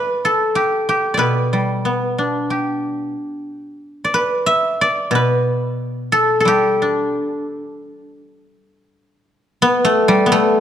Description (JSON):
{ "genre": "chinese traditional, Chinese solo plucked strings", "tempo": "80-93 BPM", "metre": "4/4", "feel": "rubato", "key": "G gong mode", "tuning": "A4 = 436 Hz", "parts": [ { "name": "guzheng", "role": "solo", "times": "0.0-10.6 s", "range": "B2 to E5", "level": "-15 LUFS", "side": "equal", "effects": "none" } ], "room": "wet recital hall reverb, RT60 1.7 s", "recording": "dark, warm production", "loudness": "-15 LUFS", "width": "side -9 dB against mid", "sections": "0.0-9.3 A section; 9.3-10.6 B section", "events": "none", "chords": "none" }